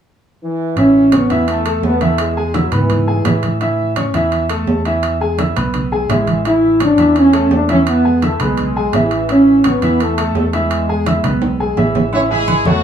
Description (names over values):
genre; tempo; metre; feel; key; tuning
latin, salsa; 169 BPM; 4/4; straight; A major; A4 = 440 Hz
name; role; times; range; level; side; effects
clear trombone section; melody; 0.4-3.4, 6.1-11.7 s; E3 to E4; -14 LUFS; equal; none
bright upright piano; accompaniment; 0.8-12.8 s; E3 to E6; -19 LUFS; left 1 dB; none
fingered electric bass; bass; 0.8-12.8 s; A1 to A2; -20 LUFS; right 1 dB; none
congas; percussion; 0.8-12.8 s; none; -22 LUFS; equal; none
timbales and agogo bells; percussion; 0.8-12.7 s; none; -22 LUFS; right 4 dB; none
brilliant horn section; melody; 12.1-12.8 s; F#3 to C#5; -18 LUFS; right 1 dB; none
room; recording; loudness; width
wet studio ambience, RT60 0.5 s; band playing live in one room, small room ambience; -12 LUFS; side -8 dB against mid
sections
0.8-12.1 A section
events
drum fill 11.4-12.1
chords
0.0 N.C.; 0.8 A; 2.2 E; 3.6 A; 5.0 E; 6.5 A; 7.9 E; 9.3 A; 10.7 E; 12.1 A